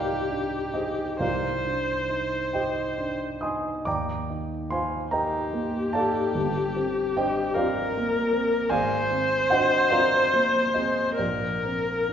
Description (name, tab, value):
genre	classical, impressionist duo for viola and grand piano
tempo	44-52 BPM (dotted quarters)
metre	6/8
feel	rubato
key	unclear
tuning	A4 = 440 Hz
part	warm viola	melody	0.0-12.1 s	G4 to C5	-25 LUFS	left 2 dB	none
part	dark baby grand piano	accompaniment	0.0-12.1 s	G1 to Eb6	-26 LUFS	right 2 dB	none
room	wet scoring stage reverb, RT60 1.6 s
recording	heard from further back in the room, nothing above 7.5 kHz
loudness	-23 LUFS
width	side -8 dB against mid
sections	0.0-12.1 A section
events	none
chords	0.0 Cm11; 3.9 Ebmaj9; 6.3 Gm11; 8.7 Ab9; 11.2 Bbadd9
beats	| 1.21 2.54 | 3.86 5.13 | 6.35 7.56 | 8.72 9.92 | 11.20